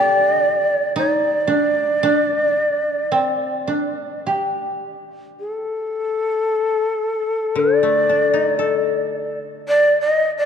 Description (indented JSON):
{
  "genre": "japanese traditional, Japanese chamber music",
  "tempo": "52-61 BPM",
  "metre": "4/4",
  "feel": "rubato",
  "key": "D in sen",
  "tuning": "A4 = 440 Hz",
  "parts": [
    { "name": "breathy mellow shakuhachi", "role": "melody", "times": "0.0-10.5 s", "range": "A4 to Eb5", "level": "-18 LUFS", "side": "equal", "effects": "none" },
    { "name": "koto", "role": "second line", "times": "0.0-6.3 s", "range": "C4 to G4", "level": "-21 LUFS", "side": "equal", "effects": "none" },
    { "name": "koto", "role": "accompaniment", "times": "0.0-10.5 s", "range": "D3 to A4", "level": "-21 LUFS", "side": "left 7 dB", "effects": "none" }
  ],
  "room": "wet church reverb, RT60 3.5 s",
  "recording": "dark, warm production",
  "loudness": "-17 LUFS",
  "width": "side -7 dB against mid",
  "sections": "0.0-5.4 A section; 5.4-10.5 B section",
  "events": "none",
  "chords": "none",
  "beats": "| 0.97 2.02 3.12 4.25 | 5.39 6.50 7.56 8.61 | 9.64"
}